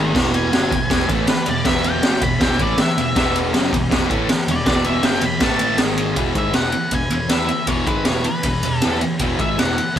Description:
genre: garage rock duo or trio.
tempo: 159 BPM.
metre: 4/4.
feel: straight.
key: E major.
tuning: A4 = 441 Hz.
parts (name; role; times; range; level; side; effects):
octave-fuzz lead guitar; melody; 0.0-9.9 s; G#4 to B5; -23 LUFS; left 1 dB; distortion.
overdriven combo organ; sustained chords; 0.0-10.0 s; D#4 to E5; -33 LUFS; equal; none.
fuzz guitar; riff; 0.0-9.8 s; E2 to E4; -21 LUFS; equal; distortion.
overdriven picked electric bass; bass; 0.0-10.0 s; E1 to E2; -28 LUFS; equal; none.
raw garage drum kit; drums; 0.1-10.0 s; crash cymbal, kick drum, ride cymbal, snare drum; -19 LUFS; equal; none.
room: light reverb.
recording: band playing live in one room.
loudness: -16 LUFS.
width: side -10 dB against mid.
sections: 0.0-6.2 A section; 6.2-10.0 B section.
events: lead electric guitar solo 0.0-6.2.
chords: 0.1 E; 5.4 A5; 5.8 G#5; 6.2 E.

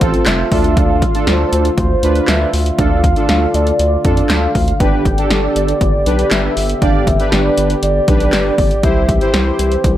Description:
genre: synth-pop.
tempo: 119 BPM.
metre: 4/4.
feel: straight.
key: D dorian.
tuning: A4 = 440 Hz.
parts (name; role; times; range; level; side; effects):
warm velvety synth lead; melody; 0.0-10.0 s; C5 to G5; -19 LUFS; equal; chorus, tape echo.
analog synth brass; accompaniment; 0.0-9.8 s; C4 to D5; -19 LUFS; right 2 dB; chorus.
mellow French horn section; sustained chords; 0.0-10.0 s; C3 to G4; -22 LUFS; left 2 dB; none.
round analog bass; bass; 0.0-10.0 s; F1 to F2; -17 LUFS; equal; none.
punchy analog drum machine; drums; 0.0-10.0 s; handclaps, hi-hat, kick drum, snare drum; -16 LUFS; equal; none.
room: digital ambience.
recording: none.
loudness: -12 LUFS.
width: side -12 dB against mid.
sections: 0.0-10.0 A section.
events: none.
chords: 0.0 F; 0.5 Dm; 4.8 G; 8.8 C.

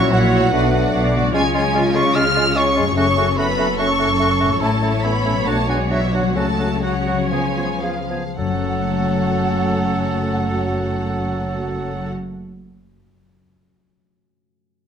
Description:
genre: classical, dramatic, fast romantic movement for symphony orchestra.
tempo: 107-149 BPM.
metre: 4/4.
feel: rubato.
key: F# minor.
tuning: A4 = 440 Hz.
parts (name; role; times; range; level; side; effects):
warm symphonic violin section; melody; 0.0-12.1 s; E5 to E#6; -26 LUFS; right 1 dB; none.
clear oboe; second line; 0.0-12.1 s; E4 to A4; -30 LUFS; right 2 dB; none.
mellow silver concert flute; second line; 0.0-12.1 s; E5 to E#6; -26 LUFS; left 1 dB; none.
rich symphonic violin section; second line; 0.0-12.1 s; E#4 to E5; -29 LUFS; right 2 dB; none.
warm clarinet; second line; 0.0-12.1 s; B3 to E4; -30 LUFS; equal; none.
mellow bassoon; accompaniment; 0.0-12.1 s; E#3 to A3; -27 LUFS; right 2 dB; none.
rich symphonic viola section; accompaniment; 0.0-12.1 s; A3 to D5; -26 LUFS; equal; none.
mellow French horn section; sustained chords; 0.0-12.1 s; E3 to E#4; -26 LUFS; left 1 dB; none.
concert harp; arpeggios; 0.0-12.4 s; F#2 to A4; -25 LUFS; left 8 dB; none.
dark symphonic double bass section; bass; 0.0-12.1 s; F#1 to C#2; -25 LUFS; right 1 dB; none.
rich symphonic cello section; bass; 0.0-12.1 s; F#2 to C#3; -26 LUFS; right 1 dB; none.
timpani; percussion; 7.3-12.1 s; none; barely audible; none; none.
room: moderate stone room reverb, RT60 1.0 s.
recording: none.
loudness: -16 LUFS.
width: side -8 dB against mid.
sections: 0.0-8.4 A section; 8.4-12.7 B section.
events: slowing down 3.8-8.4.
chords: 0.0 F#7/A#; 0.5 Bm7; 1.3 C#; 3.0 F#m; 4.6 A; 5.5 Bm7; 6.4 F#m/C#; 7.3 C#7; 8.4 F#m.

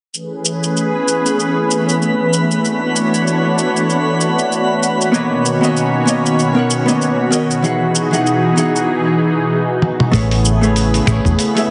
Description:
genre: sunset chillout.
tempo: 96 BPM.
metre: 4/4.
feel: swing 57% on 16ths.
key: A lydian.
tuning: A4 = 440 Hz.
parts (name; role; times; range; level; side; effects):
lush unison pad; sustained chords; 0.2-11.7 s; B2 to C#5; -18 LUFS; equal; chorus, phaser.
dusty soul sampler-style drum kit; drums; 0.1-11.7 s; finger snaps, hi-hat, shaker, toms; -22 LUFS; equal; none.
twinkling granular texture; texture; 0.8-11.7 s; B3 to B5; -26 LUFS; equal; built-in reverb.
vintage hollow-body jazz guitar; accompaniment; 5.1-11.7 s; E3 to F#5; -19 LUFS; equal; tape echo.
hollow-body short-scale fingered electric bass; bass; 10.1-11.3 s; E1 to A1; -17 LUFS; equal; none.
electronic kick drum; drums; 10.1-11.4 s; none; -24 LUFS; equal; none.
room: moderate plate reverb, RT60 1.5 s.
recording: heavily compressed radio sound, nothing above 10.4 kHz.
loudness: -15 LUFS.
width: mono.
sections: 0.1-10.1 A section; 10.1-11.7 B section.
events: drum fill 9.8-10.1.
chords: 0.1 Amaj9; 2.6 Dmaj9; 5.1 Bmaj9; 7.6 Emaj9; 10.1 Amaj9.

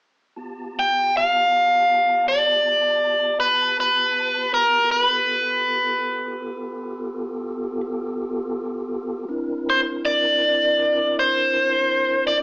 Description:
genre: blues.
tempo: 54 BPM (dotted quarters).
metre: 12/8.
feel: straight.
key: G mixolydian.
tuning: A4 = 445 Hz.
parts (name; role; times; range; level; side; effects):
mellow tonewheel organ; sustained chords; 0.4-12.4 s; B3 to A5; -29 LUFS; equal; chorus vibrato, fast rotary speaker.
biting overdriven guitar; melody; 0.8-12.4 s; Bb4 to G5; -17 LUFS; equal; none.
room: moderate large studio reverb, RT60 0.8 s.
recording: band playing live in one room, small speaker sound.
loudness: -18 LUFS.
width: side -29 dB against mid.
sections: 0.4-12.4 A section.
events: none.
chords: 0.4 G9; 9.3 C9.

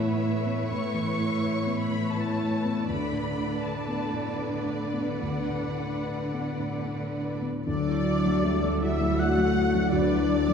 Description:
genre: cinematic, emotional film score for orchestra.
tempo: 70-84 BPM.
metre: 3/4.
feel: rubato.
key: unclear.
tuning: A4 = 440 Hz.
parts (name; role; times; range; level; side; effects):
rich studio violin section; melody; 0.0-10.5 s; D5 to C#6; -37 LUFS; left 3 dB; none.
warm studio violin section; second line; 0.0-10.5 s; B4 to F#5; -35 LUFS; left 1 dB; none.
dark studio viola section; accompaniment; 0.0-10.5 s; A3 to B4; -35 LUFS; right 2 dB; none.
felt-muted upright piano; accompaniment; 0.0-10.5 s; D2 to D5; -30 LUFS; equal; none.
concert harp; arpeggios; 0.0-10.5 s; A2 to E6; -38 LUFS; left 6 dB; none.
rich studio cello section; bass; 0.0-10.5 s; A2 to A3; -31 LUFS; right 1 dB; none.
mellow hollow concert flute; second line; 7.7-10.5 s; D6 to F#6; -35 LUFS; right 1 dB; none.
dark French horn section; sustained chords; 7.7-10.5 s; D4 to F#4; -27 LUFS; left 4 dB; none.
rich studio double bass section; bass; 7.7-10.5 s; D2; -31 LUFS; right 1 dB; none.
room: wet concert hall reverb, RT60 2.2 s.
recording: heard from further back in the room.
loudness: -25 LUFS.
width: side -6 dB against mid.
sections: 0.0-7.7 A section; 7.7-10.5 B section.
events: none.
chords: 0.0 Aadd9; 2.9 D6; 7.7 Dadd9.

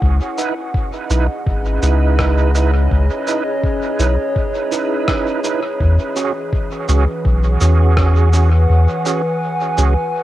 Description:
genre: ambient dub.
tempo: 83 BPM.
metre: 4/4.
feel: swing 56% on 16ths.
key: C# minor.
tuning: A4 = 439 Hz.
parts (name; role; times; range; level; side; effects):
warbly tape-like pad; sustained chords; 0.0-10.2 s; E3 to G#5; -21 LUFS; left 1 dB; chorus, built-in reverb, cassette tape.
soft dub sub bass; bass; 0.0-10.0 s; G#1 to E2; -13 LUFS; equal; none.
electronic kick drum; drums; 0.0-8.1 s; none; -20 LUFS; equal; cassette tape.
bright tonewheel organ; stabs; 0.4-9.9 s; C#4 to B4; -22 LUFS; right 7 dB; overdrive, chorus vibrato, fast rotary speaker, cassette tape, dub echo.
electronic cabasa and rim click; drums; 0.4-9.9 s; none; -27 LUFS; equal; cassette tape, dub echo.
room: digital ambience.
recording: home recording on cassette.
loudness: -14 LUFS.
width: side -14 dB against mid.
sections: 0.0-10.2 A section.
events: break 8.7-10.2.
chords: 0.0 C#m9; 5.8 E69.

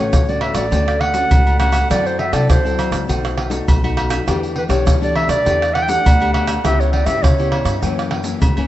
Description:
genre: samba and choro.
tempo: 101 BPM.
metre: 4/4.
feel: straight.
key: unclear.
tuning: A4 = 439 Hz.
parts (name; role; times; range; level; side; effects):
mellow clarinet; melody; 0.0-7.8 s; B4 to G5; -20 LUFS; right 1 dB; tape echo.
nylon-string guitar; accompaniment; 0.0-8.7 s; F#2 to A4; -23 LUFS; left 5 dB; none.
upright bass; bass; 0.0-8.7 s; A1 to F#3; -20 LUFS; equal; none.
egg shaker, surdo, pandeiro, tamborim and agogo bells; percussion; 0.1-8.7 s; none; -18 LUFS; right 1 dB; none.
room: moderate plate reverb, RT60 2.7 s.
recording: dreamy mix soaked in reverb, nothing above 8.0 kHz.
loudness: -14 LUFS.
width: side -14 dB against mid.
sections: 0.0-8.7 A section.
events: none.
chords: 0.0 Dmaj7; 1.9 F#m7b5; 3.1 B7; 4.3 Em7; 6.6 C#m7b5; 7.8 F#7.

